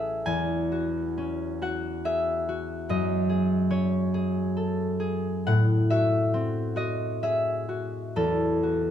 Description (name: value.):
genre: classical, solo harp piece.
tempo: 69 BPM.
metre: 3/4.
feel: uneven beats, rubato.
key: E major.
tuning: A4 = 440 Hz.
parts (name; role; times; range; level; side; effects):
concert harp; solo; 0.0-8.9 s; A1 to G#5; -24 LUFS; left 1 dB; none.
room: light reverb.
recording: close, detailed microphones.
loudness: -24 LUFS.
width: side -10 dB against mid.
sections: 0.0-8.9 A section.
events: none.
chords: 0.3 E69; 2.9 F#m9; 5.5 Am6; 8.2 Esus2.